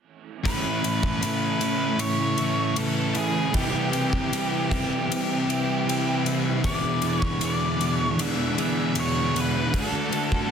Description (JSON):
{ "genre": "rock, shoegaze and dream pop", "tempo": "78 BPM", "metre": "4/4", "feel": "straight", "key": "unclear", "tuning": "A4 = 440 Hz", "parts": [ { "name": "evolving wavetable pad", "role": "sustained chords", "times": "1.3-10.5 s", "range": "C3 to B4", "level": "-32 LUFS", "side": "left 1 dB", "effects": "phaser, built-in reverb" }, { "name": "thick fuzz guitar", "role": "riff", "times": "0.4-10.5 s", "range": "E2 to D4", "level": "-27 LUFS", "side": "left 6 dB", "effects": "distortion, wide subtle chorus" }, { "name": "octave-fuzz lead guitar", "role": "melody", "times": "0.5-10.5 s", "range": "G4 to E5", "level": "-29 LUFS", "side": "equal", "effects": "distortion, tape echo" }, { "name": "crunchy overdriven guitar", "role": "riff", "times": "0.5-10.5 s", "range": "A2 to G#4", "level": "-28 LUFS", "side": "right 10 dB", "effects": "reverse reverb" }, { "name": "gated 80s drum kit", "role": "drums", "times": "0.5-10.5 s", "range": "kick drum, ride cymbal", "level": "-30 LUFS", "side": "left 1 dB", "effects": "none" } ], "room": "light reverb", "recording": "dense, heavily limited modern master", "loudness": "-22 LUFS", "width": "side -7 dB against mid", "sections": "0.4-10.5 A section", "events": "none", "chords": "0.4 Aadd9; 3.5 Cmaj7; 6.6 E7; 9.7 D" }